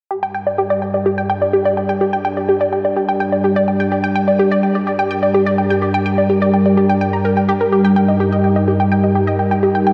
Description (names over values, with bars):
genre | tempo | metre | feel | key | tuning
techno | 126 BPM | 4/4 | straight | G minor | A4 = 440 Hz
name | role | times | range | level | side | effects
lush unison pad | sustained chords | 0.1-9.9 s | G2 to Bb4 | -19 LUFS | equal | chorus
analog pluck | arpeggios | 0.1-9.9 s | G4 to Bb5 | -18 LUFS | equal | chorus, diffuse ambient delay
room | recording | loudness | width
wet huge ambient reverb, RT60 4.7 s | dreamy mix soaked in reverb | -16 LUFS | mono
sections
0.1-9.9 A section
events
filter sweep on analog synth pad 0.1-9.9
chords
0.1 Gm; 7.7 Eb/G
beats
| 0.11 0.58 1.06 1.53 | 2.01 2.49 2.96 3.44 | 3.92 4.39 4.87 5.34 | 5.82 6.30 6.77 7.25 | 7.73 8.20 8.68 9.15 | 9.63